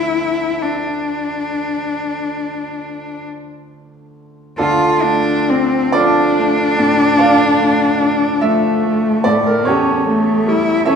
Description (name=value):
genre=classical, romantic duo for cello and grand piano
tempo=43-50 BPM (dotted quarters)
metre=12/8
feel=rubato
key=D minor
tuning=A4 = 439 Hz
part: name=rich cello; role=melody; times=0.0-11.0 s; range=A3 to F4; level=-16 LUFS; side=left 1 dB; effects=none
part: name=bright baby grand piano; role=accompaniment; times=0.0-11.0 s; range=D2 to F5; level=-17 LUFS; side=right 2 dB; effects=none
room=wet recital hall reverb, RT60 1.6 s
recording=heard from further back in the room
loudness=-13 LUFS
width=side -7 dB against mid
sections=0.0-4.6 A section; 4.6-11.0 A section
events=none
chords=0.0 Dm; 9.7 A7/E